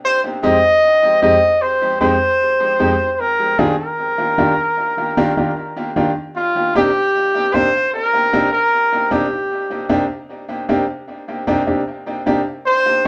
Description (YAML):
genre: reggae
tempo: 76 BPM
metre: 4/4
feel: straight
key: C minor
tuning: A4 = 440 Hz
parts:
  - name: warm trumpet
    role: melody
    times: 0.0-13.1 s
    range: F4 to Eb5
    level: -17 LUFS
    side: equal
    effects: none
  - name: clear grand piano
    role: accompaniment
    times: 0.4-13.1 s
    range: F2 to G4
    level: -22 LUFS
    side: equal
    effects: tape echo
room: wet studio reverb, RT60 0.6 s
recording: band playing live in one room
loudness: -17 LUFS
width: mono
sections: 0.0-13.1 A section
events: none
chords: 0.0 Fm7; 3.2 Ebmaj9; 6.3 Cm7